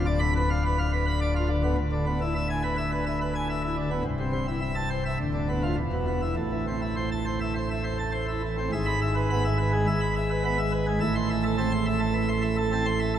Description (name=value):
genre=classical, organ toccata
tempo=105 BPM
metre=4/4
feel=straight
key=A minor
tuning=A4 = 440 Hz
part: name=pipe organ, plenum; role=solo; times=0.0-13.2 s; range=C1 to C6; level=-24 LUFS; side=equal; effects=none
room=wet cathedral reverb, RT60 6.5 s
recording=none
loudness=-24 LUFS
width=side -10 dB against mid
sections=0.0-8.7 A section; 8.7-13.2 B section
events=none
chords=0.0 Bdim/D; 1.8 E7/D; 4.0 Am/C; 5.2 Bdim/D; 5.8 E5; 6.4 Am; 8.7 E/G#; 11.0 Am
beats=0.07 0.64 1.21 | 1.78 2.35 2.91 3.48 | 4.05 4.62 5.19 5.77 | 6.36 6.96 7.55 8.14 | 8.73 9.30 9.88 10.45 | 11.03 11.60 12.17 12.74